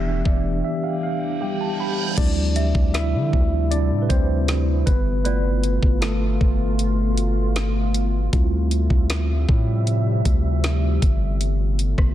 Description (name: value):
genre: contemporary R&B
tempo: 78 BPM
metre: 4/4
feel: straight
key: D dorian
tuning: A4 = 442 Hz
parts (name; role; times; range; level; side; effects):
- mellow tine electric piano; accompaniment; 0.0-11.0 s; E3 to B5; -26 LUFS; right 1 dB; medium stereo tremolo
- deep dark ambient pad; sustained chords; 0.0-12.1 s; B2 to E5; -28 LUFS; equal; chorus, built-in reverb
- long sustained 808-style bass; bass; 0.0-12.1 s; E1 to D3; -21 LUFS; equal; none
- smooth R&B drum kit; drums; 0.3-12.1 s; crash cymbal, hi-hat, kick drum, rim click, snare drum; -21 LUFS; equal; none
- reverse cymbal; sound effects; 1.2-2.2 s; none; -31 LUFS; right 6 dB; none
- small celesta; texture; 2.6-6.9 s; D5 to E5; -35 LUFS; left 2 dB; digital delay
room: little or no reverb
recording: dense, heavily limited modern master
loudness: -18 LUFS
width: side -12 dB against mid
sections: 0.0-2.2 A section; 2.2-12.1 B section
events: tine electric piano fill 0.0-2.2; break 0.6-2.2; reverse cymbal 1.2-2.2; tine electric piano solo 2.2-12.1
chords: 0.0 Em7; 2.2 Dm11; 4.9 G9; 8.3 Dm11; 11.0 G9